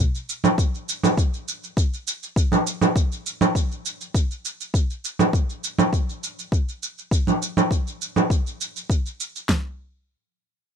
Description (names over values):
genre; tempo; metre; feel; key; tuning
organic downtempo; 101 BPM; 4/4; straight; none; none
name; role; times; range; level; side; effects
shaker and congas; drums; 0.1-9.5 s; none; -22 LUFS; right 2 dB; none
deep house drum kit; drums; 0.6-9.6 s; kick drum, snare drum, toms; -21 LUFS; left 1 dB; none
room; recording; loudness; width
little or no reverb; none; -21 LUFS; side -7 dB against mid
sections
0.0-9.5 A section; 9.5-10.8 B section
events
none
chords
none